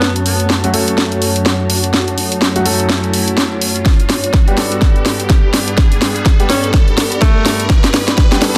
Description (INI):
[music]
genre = bass house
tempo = 125 BPM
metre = 4/4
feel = swing 59% on 16ths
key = unclear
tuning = A4 = 442 Hz
[part]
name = breathy alto saxophone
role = melody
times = 0.0-0.2, 6.5-7.7 s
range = A3 to C#4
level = -24 LUFS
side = equal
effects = delay
[part]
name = sweeping resonant pad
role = sustained chords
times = 0.0-8.6 s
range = F#2 to D4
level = -23 LUFS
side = equal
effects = chorus, sidechain pumping
[part]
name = warm grand piano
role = stabs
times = 0.0-8.6 s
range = F#3 to A4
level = -23 LUFS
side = equal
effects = sidechain pumping, delay
[part]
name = house drum kit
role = drums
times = 0.0-8.6 s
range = hi-hat, snare drum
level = -18 LUFS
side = equal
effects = overdrive
[part]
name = riser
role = sound effects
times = 0.3-8.6 s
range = none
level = -28 LUFS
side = equal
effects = none
[part]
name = granular cloud pad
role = texture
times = 0.0-8.6 s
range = F#4 to B5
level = -27 LUFS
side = equal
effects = built-in reverb, sidechain pumping
[part]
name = electronic kick drum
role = drums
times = 3.9-8.3 s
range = none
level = -13 LUFS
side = equal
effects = overdrive
[sound]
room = light reverb, small room ambience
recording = dense, heavily limited modern master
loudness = -13 LUFS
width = mono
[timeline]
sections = 0.0-8.6 A section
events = build-up 0.0-8.6; drum fill 0.0-8.6; riser 0.3-8.6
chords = 0.0 F#m; 3.9 G